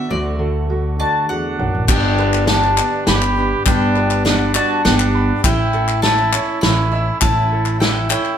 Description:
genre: indie folk with a building arrangement.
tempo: 101 BPM.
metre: 3/4.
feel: straight.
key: unclear.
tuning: A4 = 442 Hz.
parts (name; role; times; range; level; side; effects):
bowl-back mandolin; melody; 0.0-8.4 s; D5 to B5; -21 LUFS; left 2 dB; none.
fingerpicked steel-string acoustic guitar; accompaniment; 0.0-3.7 s; D2 to F#4; -25 LUFS; left 1 dB; none.
clear upright piano; arpeggios; 0.0-8.4 s; G3 to B5; -25 LUFS; right 4 dB; none.
upright bass; bass; 0.1-8.1 s; G1 to D2; -20 LUFS; equal; none.
warm trumpet; second line; 1.0-8.4 s; D4 to G4; -22 LUFS; right 4 dB; none.
picked steel-string acoustic guitar; accompaniment; 1.9-8.4 s; G2 to A4; -24 LUFS; left 6 dB; none.
loose indie drum kit; drums; 1.9-8.0 s; crash cymbal, hi-hat, kick drum, snare drum; -19 LUFS; equal; none.
group handclap; percussion; 1.9-8.3 s; none; -23 LUFS; left 6 dB; none.
room: moderate large studio reverb, RT60 0.9 s.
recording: band playing live in one room.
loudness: -14 LUFS.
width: side -8 dB against mid.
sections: 0.0-1.9 A section; 1.9-8.4 B section.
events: none.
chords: 0.1 D; 1.9 G; 5.4 A.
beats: | 0.11 0.70 1.29 | 1.89 2.48 3.07 | 3.67 4.26 4.85 | 5.44 6.04 6.63 | 7.22 7.81.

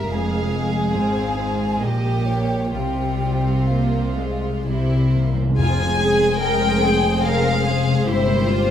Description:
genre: classical, slow romantic movement for symphony orchestra.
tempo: 61-73 BPM.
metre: 3/4.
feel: rubato.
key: F minor.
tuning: A4 = 441 Hz.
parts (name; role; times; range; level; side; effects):
rich chamber violin section; melody; 0.0-8.7 s; C5 to Ab5; -25 LUFS; left 4 dB; none.
mellow hollow concert flute; second line; 0.0-4.7 s; F5 to Bb5; -29 LUFS; left 1 dB; none.
warm symphonic violin section; second line; 0.0-8.7 s; E4 to C5; -30 LUFS; right 1 dB; none.
dark symphonic viola section; accompaniment; 0.0-8.7 s; G3 to C4; -27 LUFS; right 1 dB; none.
concert harp; arpeggios; 0.0-8.7 s; F2 to Db5; -25 LUFS; left 6 dB; none.
rich symphonic cello section; bass; 0.0-8.7 s; F2 to Bb4; -24 LUFS; right 1 dB; none.
warm symphonic double bass section; bass; 0.0-8.7 s; F1 to C2; -24 LUFS; right 2 dB; none.
timpani; percussion; 4.7-6.8 s; F2 to C3; -24 LUFS; equal; none.
room: wet stone room reverb, RT60 1.1 s.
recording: none.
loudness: -17 LUFS.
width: side -9 dB against mid.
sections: 0.0-5.6 A section; 5.6-8.7 B section.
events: timpani fill 4.7-5.6.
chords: 0.1 Fm; 1.8 Bbm7; 2.7 Csus4; 4.7 C; 5.6 Fm; 8.1 C7/G.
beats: | 0.10 0.95 1.82 | 2.74 3.69 4.66 | 5.58 6.41 7.23 | 8.05.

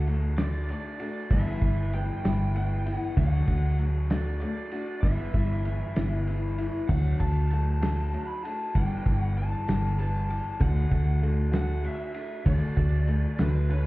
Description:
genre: folk rock and heartland rock.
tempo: 65 BPM (dotted quarters).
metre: 6/8.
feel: straight.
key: D major.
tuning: A4 = 439 Hz.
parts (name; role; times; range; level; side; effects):
lead guitar through a small cranked amp; melody; 0.0-13.9 s; B4 to B5; -37 LUFS; right 1 dB; overdrive, tape echo.
picked old ladder-braced acoustic guitar; accompaniment; 0.0-13.9 s; G2 to G4; -34 LUFS; left 2 dB; none.
hollow-body short-scale fingered electric bass; bass; 0.0-13.9 s; G1 to D2; -25 LUFS; equal; none.
cloth-damped thuddy drum kit; drums; 0.1-13.8 s; crash cymbal, kick drum, ride cymbal, snare drum; -31 LUFS; equal; none.
room: light reverb.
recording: heard muffled through a wall, club reverb, EQ.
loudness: -24 LUFS.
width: side -19 dB against mid.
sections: 0.0-13.9 A section.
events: none.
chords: 0.0 D; 1.3 G6; 3.2 D; 5.0 G6; 6.9 D; 8.7 G6; 10.6 D.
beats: 0.38 | 1.31 2.24 | 3.17 4.10 | 5.03 5.96 | 6.89 7.82 | 8.75 9.68 | 10.61 11.54 | 12.46 13.39.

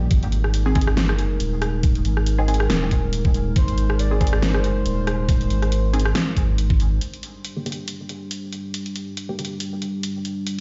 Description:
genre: deep dubstep.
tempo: 139 BPM.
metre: 4/4.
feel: swing 56% on 16ths, half-time.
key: G phrygian.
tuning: A4 = 440 Hz.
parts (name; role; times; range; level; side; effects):
dark analog pad; sustained chords; 0.0-10.6 s; G3 to Bb4; -31 LUFS; equal; subtle chorus.
filtered dub chord stab; stabs; 0.0-9.5 s; D3 to Ab4; -33 LUFS; equal; phaser, subtle chorus, dub echo.
soft dub sub bass; bass; 0.0-7.0 s; Eb1 to Ab1; -23 LUFS; equal; none.
dubstep drum kit; drums; 0.1-10.6 s; hi-hat, rim click, snare drum; -30 LUFS; equal; none.
electronic kick drum; drums; 0.1-6.8 s; none; -22 LUFS; equal; none.
breathy flute-like synth lead; melody; 3.6-6.6 s; C5 to D5; -37 LUFS; equal; tremolo, lush chorus, dub echo.
room: light reverb.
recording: played on a big sound system in a bare room, stone room reverb, nothing above 7.6 kHz.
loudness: -22 LUFS.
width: mono.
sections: 0.0-7.0 A section; 7.0-10.6 B section.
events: none.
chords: 0.1 Ab; 7.0 G5.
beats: | 0.11 0.54 0.97 1.40 | 1.83 2.27 2.70 3.13 | 3.56 3.99 4.42 4.86 | 5.29 5.72 6.15 6.58 | 7.01 7.45 7.88 8.31 | 8.74 9.17 9.60 10.04 | 10.47.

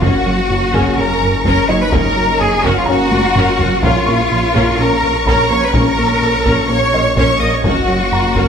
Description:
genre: cinematic, hybrid orchestral and electronic film score.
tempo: 126 BPM.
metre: 4/4.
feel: straight.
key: unclear.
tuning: A4 = 440 Hz.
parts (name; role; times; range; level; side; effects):
rich symphonic violin section; melody; 0.0-8.5 s; Db6; -25 LUFS; left 2 dB; none.
rich symphonic violin section; second line; 0.0-8.5 s; F5 to Eb6; -20 LUFS; left 2 dB; none.
warm symphonic viola section; accompaniment; 0.0-8.5 s; Db4 to Bb4; -22 LUFS; equal; none.
dark French horn section; sustained chords; 0.0-7.8 s; Bb3 to Db4; -25 LUFS; left 3 dB; none.
glassy FM pad; sustained chords; 0.0-8.5 s; Bb3 to Db5; -24 LUFS; left 1 dB; ensemble chorus, built-in reverb.
smooth synth bass; riff; 0.0-8.5 s; Gb2 to Bb3; -21 LUFS; right 2 dB; none.
clear symphonic double bass section; bass; 0.0-8.4 s; Gb1 to Bb1; -22 LUFS; right 3 dB; none.
detuned saw bass; bass; 0.0-8.5 s; Gb1 to Bb1; -24 LUFS; equal; none.
rich symphonic cello section; bass; 0.0-8.5 s; F4 to Eb5; -17 LUFS; equal; none.
taiko ensemble; drums; 0.0-8.5 s; none; -21 LUFS; equal; none.
warm grand piano; texture; 0.0-8.5 s; Eb4 to Db6; -25 LUFS; equal; digital delay.
room: moderate scoring stage reverb, RT60 1.9 s.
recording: none.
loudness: -11 LUFS.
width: side -7 dB against mid.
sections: 0.0-8.5 A section.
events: drum fill 3.1-3.8.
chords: 0.0 Gb; 3.8 Bbm; 7.6 Gb.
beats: | 0.03 0.50 0.98 1.45 | 1.93 2.41 2.88 3.36 | 3.83 4.31 4.79 5.26 | 5.74 6.21 6.69 7.17 | 7.64 8.12.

